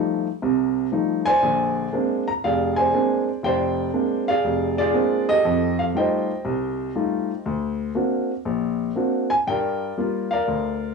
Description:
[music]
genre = solo jazz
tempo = 119 BPM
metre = 4/4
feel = swing 66% on 8ths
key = unclear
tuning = A4 = 440 Hz
[part]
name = warm baby grand piano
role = solo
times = 0.0-10.9 s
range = F1 to Bb5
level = -20 LUFS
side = equal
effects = cassette tape
[sound]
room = wet booth ambience, RT60 0.2 s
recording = home recording on cassette, small room ambience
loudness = -20 LUFS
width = side -4 dB against mid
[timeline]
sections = 0.0-10.9 A section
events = none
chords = 0.0 F9; 1.4 Bb9; 5.4 F9; 7.5 Daug7; 9.5 Gm7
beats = 0.41 0.91 | 1.41 1.92 2.42 2.92 | 3.43 3.93 4.44 4.94 | 5.44 5.95 6.45 6.95 | 7.46 7.96 8.46 8.97 | 9.47 9.97 10.47

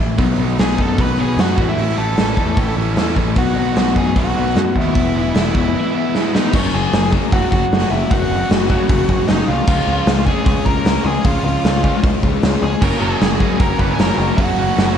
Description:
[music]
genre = punk rock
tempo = 152 BPM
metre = 4/4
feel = straight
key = B mixolydian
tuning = A4 = 440 Hz
[part]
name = growling picked electric bass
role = bass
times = 0.0-15.0 s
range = E1 to F#2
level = -22 LUFS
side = equal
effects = overdrive
[part]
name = cranked stack guitar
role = riff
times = 0.2-6.5, 12.8-15.0 s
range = F#2 to E4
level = -24 LUFS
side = right 10 dB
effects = overdrive, slapback echo
[part]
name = raw garage guitar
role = riff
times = 0.2-15.0 s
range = E2 to C#4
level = -22 LUFS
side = left 9 dB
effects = overdrive, slapback echo
[part]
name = big rock drum kit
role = drums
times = 0.2-14.9 s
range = crash cymbal, hi-hat, kick drum, snare drum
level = -17 LUFS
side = equal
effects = none
[part]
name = smooth overdriven lead guitar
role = melody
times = 0.6-15.0 s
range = C#4 to B5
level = -22 LUFS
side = right 1 dB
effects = slapback echo, tape echo
[part]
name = overdriven electric guitar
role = riff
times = 6.5-15.0 s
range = F#2 to C#4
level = -24 LUFS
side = equal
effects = slapback echo
[sound]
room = light reverb, studio reverb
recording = cassette tape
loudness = -14 LUFS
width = side -8 dB against mid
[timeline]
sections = 0.0-6.5 A section; 6.5-15.0 B section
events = drum fill 6.1-6.5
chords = 0.2 B; 1.6 A; 3.4 B; 5.0 E; 6.5 F#; 9.7 C#; 12.8 F#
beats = | 0.19 0.59 0.98 1.38 | 1.78 2.18 2.57 2.97 | 3.37 3.77 4.16 4.56 | 4.95 5.35 5.75 6.14 | 6.54 6.93 7.32 7.72 | 8.11 8.50 8.89 9.29 | 9.68 10.07 10.46 10.86 | 11.25 11.64 12.03 12.43 | 12.82 13.21 13.60 13.99 | 14.38 14.78

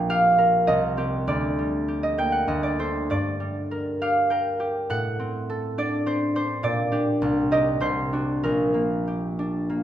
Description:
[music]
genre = classical, solo harp piece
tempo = 100 BPM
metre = 3/4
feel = uneven beats, rubato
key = G minor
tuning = A4 = 441 Hz
[part]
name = concert harp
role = solo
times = 0.0-9.8 s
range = Bb1 to G5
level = -22 LUFS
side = equal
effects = none
[sound]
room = wet recital hall reverb, RT60 1.4 s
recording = recorded in a church or concert hall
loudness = -22 LUFS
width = side -11 dB against mid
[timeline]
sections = 0.0-9.8 A section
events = none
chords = 0.0 Gm/Bb; 0.7 Cm; 1.3 Gm/D; 2.5 D5; 3.1 Gm; 4.9 D7/A; 6.6 Gm/Bb; 7.2 Cm; 7.8 D7/C; 8.4 Gm/Bb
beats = 0.08 0.67 | 1.26 1.88 2.48 | 3.10 3.71 4.31 | 4.89 5.49 6.06 | 6.63 7.20 7.81 | 8.43 9.06 9.69

